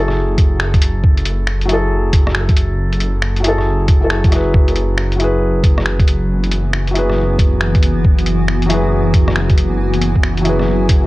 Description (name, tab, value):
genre	future garage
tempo	137 BPM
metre	4/4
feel	swing 64% on 16ths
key	unclear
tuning	A4 = 438 Hz
part	felt-muted upright piano	accompaniment	0.0-11.1 s	F#3 to B4	-19 LUFS	left 1 dB	vintage 12-bit sampler grit, sidechain pumping, tape echo
part	dark detuned saw bass	bass	0.0-11.1 s	F#1	-17 LUFS	equal	sidechain pumping
part	lo-fi sampler-style drum kit	drums	0.1-11.0 s	finger snaps, hi-hat, rim click	-22 LUFS	equal	vintage 12-bit sampler grit
part	electronic kick drum	drums	0.4-11.0 s	none	-12 LUFS	equal	vintage 12-bit sampler grit
part	granular cloud pad	sustained chords	6.4-11.1 s	E3 to G#5	-20 LUFS	equal	built-in reverb, sidechain pumping
room	digital ambience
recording	dry, gritty hardware recording, cassette tape, nothing above 10.6 kHz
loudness	-12 LUFS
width	side -19 dB against mid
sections	0.0-11.1 A section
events	none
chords	0.0 Eadd9/F#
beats	0.16 0.60 | 1.04 1.48 1.91 2.35 | 2.79 3.23 3.67 4.10 | 4.54 4.98 5.42 5.86 | 6.29 6.73 7.17 7.61 | 8.04 8.48 8.92 9.36 | 9.80 10.23 10.67